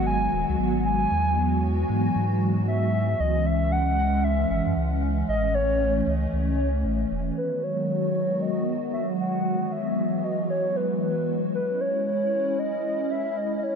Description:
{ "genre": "IDM", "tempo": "115 BPM", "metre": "4/4", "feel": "swing 62% on 16ths", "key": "unclear", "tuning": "A4 = 440 Hz", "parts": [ { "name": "warbly nostalgic lead", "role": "melody", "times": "0.0-13.8 s", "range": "B4 to G#5", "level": "-27 LUFS", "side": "equal", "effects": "chorus, digital delay" }, { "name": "hollow soft pad", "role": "sustained chords", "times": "0.0-13.8 s", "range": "D#3 to F#4", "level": "-26 LUFS", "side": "equal", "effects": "ensemble chorus" }, { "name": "warm sub bass", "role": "bass", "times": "0.0-7.3 s", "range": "D#1 to G#2", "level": "-26 LUFS", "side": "equal", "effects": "none" } ], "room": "light reverb", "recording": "none", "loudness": "-22 LUFS", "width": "side -6 dB against mid", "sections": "0.0-7.4 A section; 7.4-13.8 B section", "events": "none", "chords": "0.0 G#m7; 1.1 Eadd9; 3.2 C#m; 5.3 A; 7.4 G#m7; 9.5 Eadd9; 11.5 C#m" }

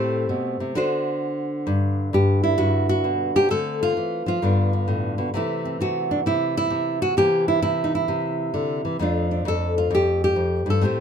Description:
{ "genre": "solo jazz", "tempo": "131 BPM", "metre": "4/4", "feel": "swing 67% on 8ths", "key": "unclear", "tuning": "A4 = 440 Hz", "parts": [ { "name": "nylon-string guitar", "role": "solo", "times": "0.0-11.0 s", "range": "F2 to C5", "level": "-20 LUFS", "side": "equal", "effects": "none" } ], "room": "moderate booth ambience, RT60 0.2 s", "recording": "none", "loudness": "-20 LUFS", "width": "side -7 dB against mid", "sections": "0.0-1.7 A section; 1.7-11.0 B section", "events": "nylon-string guitar solo 0.0-1.7", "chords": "0.0 Am7; 0.7 D7; 1.7 Gmaj7; 3.5 Dm7; 4.4 G7; 5.3 C6; 7.2 C7; 9.0 F6" }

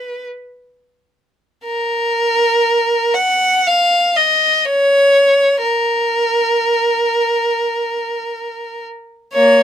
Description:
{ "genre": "classical, free, expressive piece for unaccompanied violin", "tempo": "free time", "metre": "none", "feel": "none", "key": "unclear", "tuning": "A4 = 439 Hz", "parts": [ { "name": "rich violin", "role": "solo", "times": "0.0-9.6 s", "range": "Bb3 to Gb5", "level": "-13 LUFS", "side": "equal", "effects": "none" } ], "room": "light reverb", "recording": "minimal, uncompressed stereo recording", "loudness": "-13 LUFS", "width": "side -10 dB against mid", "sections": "0.0-1.6 A section; 1.6-9.6 B section", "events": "none", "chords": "none" }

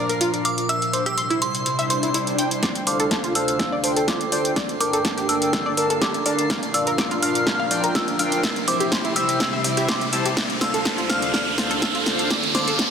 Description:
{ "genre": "progressive house", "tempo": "124 BPM", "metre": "4/4", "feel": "straight", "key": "unclear", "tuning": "A4 = 440 Hz", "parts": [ { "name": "glassy synth bell", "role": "melody", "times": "0.0-12.9 s", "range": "Bb5 to F6", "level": "-27 LUFS", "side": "equal", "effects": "chorus, sidechain pumping, low-pass filter, tape echo" }, { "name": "evolving wavetable pad", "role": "sustained chords", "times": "0.0-12.9 s", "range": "D2 to A5", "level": "-30 LUFS", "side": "right 1 dB", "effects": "ensemble chorus, built-in reverb, sidechain pumping" }, { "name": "tight sequenced synth", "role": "arpeggios", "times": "0.0-12.8 s", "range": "E4 to E6", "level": "-27 LUFS", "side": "equal", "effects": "chorus, sidechain pumping, digital delay" }, { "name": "drifting glass-harmonics texture", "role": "texture", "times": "0.0-12.9 s", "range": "C7", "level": "-36 LUFS", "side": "right 4 dB", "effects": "chorus, built-in reverb, sidechain pumping" }, { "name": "deep house drum kit", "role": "drums", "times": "0.1-12.9 s", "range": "hi-hat, snare drum", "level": "-24 LUFS", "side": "equal", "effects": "overdrive, sidechain pumping on hats" }, { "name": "swell and riser", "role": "sound effects", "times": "1.8-12.9 s", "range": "none", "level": "-29 LUFS", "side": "right 1 dB", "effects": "none" }, { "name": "electronic kick drum", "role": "drums", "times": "2.6-12.9 s", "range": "none", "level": "-32 LUFS", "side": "equal", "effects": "overdrive, high-pass filter on kick, high-pass filter on room" }, { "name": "chorused polysynth", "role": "stabs", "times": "2.9-12.9 s", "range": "C4 to A5", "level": "-25 LUFS", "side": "left 1 dB", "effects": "sidechain pumping, digital delay" } ], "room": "wet lush hall reverb, RT60 2.0 s", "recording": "dense, heavily limited modern master", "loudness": "-19 LUFS", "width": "side -7 dB against mid", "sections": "0.0-2.6 A section; 2.6-12.9 B section", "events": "swell 1.8-2.6; build-up 2.6-12.9; drum fill 2.6-12.9; riser 2.6-12.9; filter sweep on synth arpeggio sound 2.6-12.9; filter sweep on analog polysynth 2.6-12.9; filter sweep on ambient pad 2.6-12.9; filter sweep on synth bell 2.6-12.9", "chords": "0.0 Bb; 0.7 C; 2.6 Dm7; 4.6 Gmadd9; 6.5 Bb; 8.4 C; 10.4 Dm7; 12.3 Gmadd9" }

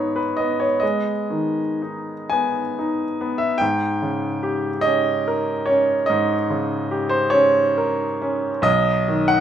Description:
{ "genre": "classical, romantic nocturne for solo piano", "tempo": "37-50 BPM (dotted quarters)", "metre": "12/8", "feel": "rubato", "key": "G# minor", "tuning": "A4 = 441 Hz", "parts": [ { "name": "clear baby grand piano", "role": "solo", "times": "0.0-9.4 s", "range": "B1 to G#5", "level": "-18 LUFS", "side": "equal", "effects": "none" } ], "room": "light reverb", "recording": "minimal, uncompressed stereo recording", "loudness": "-18 LUFS", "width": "side -9 dB against mid", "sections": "0.0-9.4 A section", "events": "none", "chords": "0.0 G#m; 3.6 Gdim/G#; 8.7 G#m/B (rootless)" }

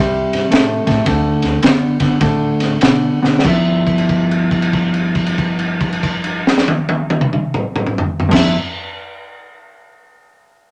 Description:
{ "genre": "electric blues shuffle", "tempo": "93-113 BPM", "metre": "4/4", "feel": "swing 65% on 8ths", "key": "G mixolydian", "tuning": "A4 = 440 Hz", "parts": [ { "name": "mellow electric guitar", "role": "riff", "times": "0.0-8.6 s", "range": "G2 to E4", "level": "-18 LUFS", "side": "equal", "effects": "none" }, { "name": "upright bass", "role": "bass", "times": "0.0-8.5 s", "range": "G1 to B2", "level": "-31 LUFS", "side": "equal", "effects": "none" }, { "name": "crunchy breakbeat drum kit", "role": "drums", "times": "0.0-8.5 s", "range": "crash cymbal, kick drum, ride cymbal, snare drum, toms", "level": "-19 LUFS", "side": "equal", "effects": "none" } ], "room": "moderate club reverb, RT60 0.5 s", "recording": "none", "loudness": "-16 LUFS", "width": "mono", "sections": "0.0-3.4 A section; 3.4-8.6 B section", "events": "slowing down 0.0-3.4; drum fill 3.1-3.4; held note 3.4-8.2", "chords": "0.0 C5; 1.1 D; 3.4 G6" }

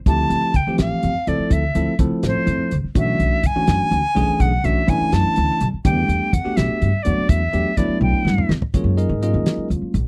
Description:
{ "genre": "electric jazz fusion", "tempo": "83 BPM (dotted quarters)", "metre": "6/8", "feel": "straight", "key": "unclear", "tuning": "A4 = 440 Hz", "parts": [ { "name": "bright reedy silver concert flute", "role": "melody", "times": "0.1-8.5 s", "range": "C5 to A5", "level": "-24 LUFS", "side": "equal", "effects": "none" }, { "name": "bell-like tine electric piano", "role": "accompaniment", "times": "0.1-9.9 s", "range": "E3 to Eb5", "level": "-25 LUFS", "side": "equal", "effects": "none" }, { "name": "upright bass", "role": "bass", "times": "0.1-10.0 s", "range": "A1 to Ab2", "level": "-23 LUFS", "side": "equal", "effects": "none" }, { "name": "damped 70s drum kit", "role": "drums", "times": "0.1-10.1 s", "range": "hi-hat, kick drum, snare drum, toms", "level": "-22 LUFS", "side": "equal", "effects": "none" } ], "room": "little or no reverb", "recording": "dry, close 1970s-style studio recording", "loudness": "-19 LUFS", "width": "mono", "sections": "0.0-8.7 A section; 8.7-10.1 B section", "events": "drum fill 8.0-8.7", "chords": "0.1 Dm11; 3.0 Bm11; 5.8 Em11; 8.7 Ebm11" }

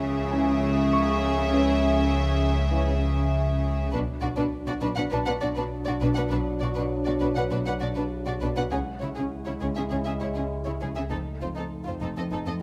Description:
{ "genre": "cinematic", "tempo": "100 BPM", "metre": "4/4", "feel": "straight", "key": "unclear", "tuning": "A4 = 437 Hz", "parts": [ { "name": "warm studio violin section", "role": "melody", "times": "0.0-12.5 s", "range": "G#4 to F#5", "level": "-35 LUFS", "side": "equal", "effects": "none" }, { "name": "warm symphonic violin section", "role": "second line", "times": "0.0-12.6 s", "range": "C#4 to B4", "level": "-36 LUFS", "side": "equal", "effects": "none" }, { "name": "dark studio viola section", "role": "accompaniment", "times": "0.0-12.5 s", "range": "C4 to D4", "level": "-36 LUFS", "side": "equal", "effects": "none" }, { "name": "rich symphonic cello section", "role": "bass", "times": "0.0-12.5 s", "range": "F2 to C#3", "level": "-33 LUFS", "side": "equal", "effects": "none" }, { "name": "warm symphonic double bass section", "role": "bass", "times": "0.0-12.4 s", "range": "F1 to C#2", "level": "-32 LUFS", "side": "equal", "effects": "none" }, { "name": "metallic inharmonic drone", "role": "drone", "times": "0.0-12.6 s", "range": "B1 to F2", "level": "-34 LUFS", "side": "equal", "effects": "chorus, built-in reverb" }, { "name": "warm grand piano", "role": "texture", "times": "0.0-11.1 s", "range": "F#5 to C#6", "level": "-38 LUFS", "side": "equal", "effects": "none" }, { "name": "dark French horn section", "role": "sustained chords", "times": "0.3-12.6 s", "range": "E3 to E4", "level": "-34 LUFS", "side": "equal", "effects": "none" } ], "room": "light reverb", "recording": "close, detailed microphones", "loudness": "-26 LUFS", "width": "mono", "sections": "0.0-12.6 A section", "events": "none", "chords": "0.0 C#m; 3.9 Bm; 8.7 C#m; 11.1 F7" }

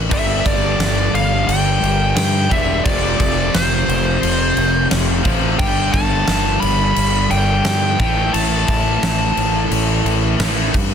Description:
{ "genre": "hard rock", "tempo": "88 BPM", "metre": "4/4", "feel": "straight", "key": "unclear", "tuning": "A4 = 440 Hz", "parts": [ { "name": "fuzz fingered electric bass", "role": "bass", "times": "0.0-10.9 s", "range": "E1 to G2", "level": "-20 LUFS", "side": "equal", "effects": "overdrive" }, { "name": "bluesy overdriven lead guitar", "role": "melody", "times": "0.1-9.7 s", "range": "C5 to B5", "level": "-20 LUFS", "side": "equal", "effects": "distortion, digital delay" }, { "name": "distorted electric guitar", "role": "riff", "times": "0.1-10.7 s", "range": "F2 to A3", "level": "-19 LUFS", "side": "left 1 dB", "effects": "distortion" }, { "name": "huge arena drum kit", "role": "drums", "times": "0.1-10.9 s", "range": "crash cymbal, kick drum, snare drum", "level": "-20 LUFS", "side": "equal", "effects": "none" } ], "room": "small room ambience", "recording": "dense, heavily limited modern master", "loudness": "-14 LUFS", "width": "side -8 dB against mid", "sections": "0.0-10.9 A section", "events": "none", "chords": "0.1 G5; 2.9 F5; 5.6 G; 8.0 A5" }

